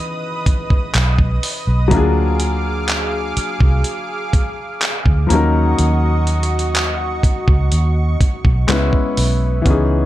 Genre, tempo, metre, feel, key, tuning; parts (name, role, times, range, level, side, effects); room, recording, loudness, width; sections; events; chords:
contemporary R&B; 62 BPM; 4/4; straight; A4 = 440 Hz
warm baby grand piano; accompaniment; 0.0-10.1 s; E3 to B4; -20 LUFS; left 3 dB
lush unison pad; sustained chords; 0.0-10.1 s; F#4 to D#6; -25 LUFS; right 2 dB; chorus, sidechain pumping
dusty soul sampler-style drum kit; drums; 0.5-9.9 s; handclaps, hi-hat, kick drum; -17 LUFS; equal
vintage muted fingered electric bass; bass; 0.9-10.1 s; B1 to D#2; -16 LUFS; equal
digital ambience; dark, warm production; -14 LUFS; side -14 dB against mid
0.0-9.7 A section
0.0 C#m9; 1.9 A#7b13; 5.3 D#m7; 8.7 C#m7